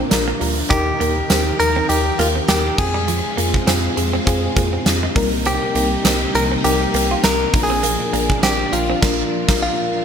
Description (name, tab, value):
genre	1980s-style pop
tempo	101 BPM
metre	4/4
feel	swing 55% on 16ths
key	Eb major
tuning	A4 = 439 Hz
part	mellow FM electric piano	accompaniment	0.0-10.0 s	Bb2 to Bb4	-23 LUFS	left 3 dB	chorus
part	string machine, violins	sustained chords	0.0-10.0 s	C3 to Bb4	-25 LUFS	equal	ensemble chorus
part	direct-recorded clean electric guitar	riff	0.0-9.0 s	F3 to F4	-27 LUFS	right 4 dB	lush chorus, ping-pong delay
part	round analog bass	bass	0.0-9.7 s	Bb1 to F2	-24 LUFS	equal	none
part	huge arena drum kit	drums	0.1-9.7 s	crash cymbal, hi-hat, kick drum, snare drum, tambourine	-20 LUFS	right 1 dB	none
part	direct-recorded clean electric guitar	melody	0.7-10.0 s	F4 to Bb4	-21 LUFS	equal	ping-pong delay
room	moderate plate reverb, RT60 1.2 s, small room ambience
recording	bright 1980s-style digital production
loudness	-15 LUFS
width	side -7 dB against mid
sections	0.0-10.0 A section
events	band accent 9.0-10.0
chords	0.0 Bb; 0.7 Eb; 2.8 Fm; 5.2 Cm7; 7.5 Bb